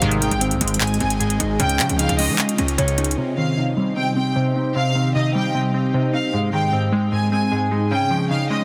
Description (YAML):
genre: hip hop, trap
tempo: 152 BPM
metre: 4/4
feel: half-time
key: C phrygian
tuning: A4 = 440 Hz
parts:
  - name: glassy wavetable pluck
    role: accompaniment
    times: 0.0-8.6 s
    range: Ab2 to Eb4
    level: -24 LUFS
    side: equal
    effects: chorus, low-pass filter
  - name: glassy FM pad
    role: sustained chords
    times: 0.0-8.6 s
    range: C4 to Eb5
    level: -34 LUFS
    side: equal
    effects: ensemble chorus, built-in reverb, low-pass filter
  - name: mellow electric guitar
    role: arpeggios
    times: 0.0-8.6 s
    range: Ab3 to Db5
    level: -27 LUFS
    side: equal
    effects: subtle chorus, low-pass filter, tape echo
  - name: distorted 808-style bass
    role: bass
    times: 0.0-3.2 s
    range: Ab1 to F3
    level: -27 LUFS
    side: equal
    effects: distortion
  - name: trap drum kit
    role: drums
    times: 0.0-3.2 s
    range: handclaps, hi-hat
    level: -26 LUFS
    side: equal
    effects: none
  - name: warm symphonic violin section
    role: second line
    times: 0.2-8.6 s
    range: Eb5 to Ab5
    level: -28 LUFS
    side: equal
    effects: tape echo
room: light reverb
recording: dense, heavily limited modern master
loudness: -20 LUFS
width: mono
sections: 0.0-3.2 A section; 3.2-8.6 B section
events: filter sweep 3.2-8.6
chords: 0.0 Ab; 1.6 Dbadd9; 3.2 Cm; 6.3 Ab; 7.9 Dbadd9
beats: | 0.02 0.41 0.81 1.20 | 1.60 1.99 2.39 2.78 | 3.17 3.57 3.96 4.36 | 4.75 5.15 5.54 5.94 | 6.33 6.73 7.12 7.52 | 7.91 8.31